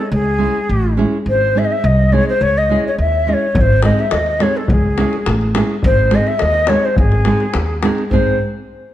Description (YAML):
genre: balkan folk, Balkan wedding band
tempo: 105 BPM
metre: 2/4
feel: straight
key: unclear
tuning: A4 = 439 Hz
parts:
  - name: breathy ney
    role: melody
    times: 0.0-8.4 s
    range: G#4 to E5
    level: -17 LUFS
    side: left 1 dB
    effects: none
  - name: nylon-string guitar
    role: accompaniment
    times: 0.0-8.4 s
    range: G#3 to G#4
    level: -20 LUFS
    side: right 3 dB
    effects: none
  - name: upright bass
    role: bass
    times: 0.1-8.4 s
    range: G#1 to D#2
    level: -17 LUFS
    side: equal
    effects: none
  - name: davul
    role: percussion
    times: 3.5-8.4 s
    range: none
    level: -19 LUFS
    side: left 2 dB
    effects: none
room: moderate recital hall reverb, RT60 1.6 s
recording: dark, warm production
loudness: -13 LUFS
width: side -13 dB against mid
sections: 0.0-8.1 A section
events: none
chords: 0.1 C#m; 1.3 G#; 2.4 C#m; 3.5 G#; 4.7 C#m; 5.8 G#